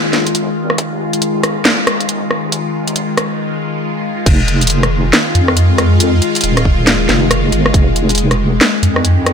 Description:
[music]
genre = deep dubstep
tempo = 138 BPM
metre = 4/4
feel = swing 62% on 16ths, half-time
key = F minor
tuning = A4 = 441 Hz
[part]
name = bowed-like drone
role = sustained chords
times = 0.0-9.3 s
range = Eb3 to G4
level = -17 LUFS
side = left 2 dB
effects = built-in reverb, phaser
[part]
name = deep soft wobble bass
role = bass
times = 0.1-9.3 s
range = Eb1 to F2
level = -14 LUFS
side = equal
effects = chorus, tube saturation, high-pass filter
[part]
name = garage drum kit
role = drums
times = 0.1-9.3 s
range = crash cymbal, hi-hat, rim click, snare drum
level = -15 LUFS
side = equal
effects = none
[part]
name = electronic kick drum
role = drums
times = 0.8-7.8 s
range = none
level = -13 LUFS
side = equal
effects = high-pass filter on kick, high-pass filter on room
[sound]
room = light reverb, digital ambience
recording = none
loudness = -11 LUFS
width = side -7 dB against mid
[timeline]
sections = 0.0-4.3 A section; 4.3-9.3 B section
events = build-up 0.0-4.3; filter sweep on synth drone 0.0-4.3; break 3.4-4.3; drop 4.3-9.3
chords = 0.0 Fm7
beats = 0.35 | 0.78 1.22 1.65 2.09 | 2.52 2.96 3.39 3.83 | 4.26 4.70 5.13 5.57 | 6.00 6.44 6.87 7.31 | 7.74 8.18 8.61 9.04

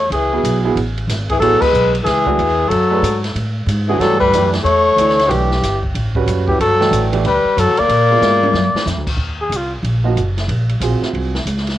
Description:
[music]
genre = modal jazz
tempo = 185 BPM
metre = 4/4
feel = swing 63% on 8ths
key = unclear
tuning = A4 = 437 Hz
[part]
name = trumpet with bucket mute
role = melody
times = 0.0-9.7 s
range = F4 to D5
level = -15 LUFS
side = equal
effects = none
[part]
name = clear tenor saxophone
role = second line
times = 0.0-8.9 s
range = D3 to A#3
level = -20 LUFS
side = left 7 dB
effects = cassette tape
[part]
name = upright bass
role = bass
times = 0.0-11.8 s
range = F#1 to A#2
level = -19 LUFS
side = equal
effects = none
[part]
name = open jazz drum kit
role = drums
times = 0.1-11.8 s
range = crash cymbal, hi-hat, kick drum, ride cymbal, snare drum, toms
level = -24 LUFS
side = equal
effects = cassette tape
[part]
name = warm grand piano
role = accompaniment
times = 0.3-11.3 s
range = B2 to G5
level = -20 LUFS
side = right 6 dB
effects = cassette tape
[sound]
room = light reverb, small room reverb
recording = home recording on cassette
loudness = -13 LUFS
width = side -13 dB against mid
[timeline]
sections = 0.0-9.2 A section; 9.2-11.8 B section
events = band accent 1.6; drum fill 8.2-8.9; muted trumpet solo 9.2-11.8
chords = 0.0 F#m11; 4.0 Em11; 7.9 A#7b9; 9.2 Ebm11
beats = | 0.11 0.44 0.76 1.09 | 1.41 1.73 2.06 2.38 | 2.71 3.03 3.35 3.68 | 4.00 4.33 4.65 4.97 | 5.30 5.62 5.95 6.27 | 6.60 6.92 7.25 7.57 | 7.89 8.22 8.54 8.87 | 9.19 9.52 9.84 10.16 | 10.49 10.81 11.14 11.46

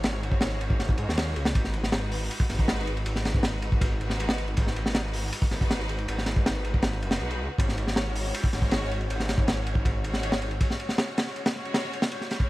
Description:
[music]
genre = drum and bass, jungle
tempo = 159 BPM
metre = 4/4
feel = straight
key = G# minor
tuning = A4 = 441 Hz
[part]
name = clear studio string section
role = sustained chords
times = 0.0-12.5 s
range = G#3 to C#5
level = -34 LUFS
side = equal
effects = none
[part]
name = detuned saw bass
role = bass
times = 0.0-10.6 s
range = F#1 to G#2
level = -30 LUFS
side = equal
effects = none
[part]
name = crunchy breakbeat drum kit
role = drums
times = 0.0-12.5 s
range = hi-hat, kick drum, ride cymbal, snare drum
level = -26 LUFS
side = equal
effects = none
[sound]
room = small room ambience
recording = vinyl crackle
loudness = -24 LUFS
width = side -18 dB against mid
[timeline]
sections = 0.0-12.5 A section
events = none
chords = 0.0 C#sus4/G#; 1.6 G#m7; 7.6 C#sus4/G#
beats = | 0.04 0.42 0.80 1.18 | 1.55 1.93 2.31 2.69 | 3.06 3.44 3.82 4.19 | 4.57 4.95 5.33 5.70 | 6.08 6.46 6.84 7.21 | 7.59 7.97 8.35 8.72 | 9.10 9.48 9.85 10.23 | 10.61 10.99 11.36 11.74 | 12.12 12.50

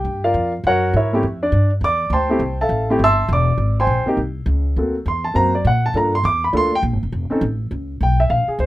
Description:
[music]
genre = jazz, small-group swing and bop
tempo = 204 BPM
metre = 4/4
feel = swing 63% on 8ths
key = F major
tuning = A4 = 440 Hz
[part]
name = warm grand piano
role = accompaniment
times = 0.0-8.7 s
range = A3 to E6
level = -18 LUFS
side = equal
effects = none
[part]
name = upright bass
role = bass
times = 0.0-8.7 s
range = E1 to Bb2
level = -20 LUFS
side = equal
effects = none
[sound]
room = little or no reverb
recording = minimal, uncompressed stereo recording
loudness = -16 LUFS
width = side -16 dB against mid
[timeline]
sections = 0.0-3.6 A section; 3.6-8.7 A section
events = none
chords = 0.1 Gm7; 0.6 Gb9; 1.2 Fmaj9; 3.6 Abmaj7; 4.8 D7b13; 5.9 Gm7; 7.1 Faug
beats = | 0.05 0.34 0.64 0.93 | 1.23 1.52 1.82 2.11 | 2.41 2.70 3.00 3.29 | 3.59 3.88 4.18 4.47 | 4.77 5.06 5.36 5.65 | 5.95 6.24 6.54 6.83 | 7.13 7.42 7.72 8.01 | 8.31 8.60

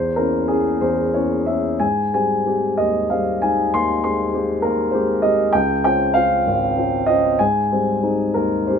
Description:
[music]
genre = classical, lyrical solo piano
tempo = 64 BPM (dotted quarters)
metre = 6/8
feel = uneven beats, rubato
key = Ab major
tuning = A4 = 440 Hz
[part]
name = dark baby grand piano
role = solo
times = 0.0-8.8 s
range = Ab1 to C6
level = -16 LUFS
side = equal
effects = none
[sound]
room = light reverb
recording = minimal, uncompressed stereo recording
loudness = -16 LUFS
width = side -7 dB against mid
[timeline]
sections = 0.0-8.8 A section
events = none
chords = 0.0 Dbm6/Fb; 1.8 Abmaj7; 5.5 Dbmaj7; 7.4 Abmaj7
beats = 0.83 | 1.81 2.79 | 3.73 4.63 | 5.53 6.46 | 7.40 8.35

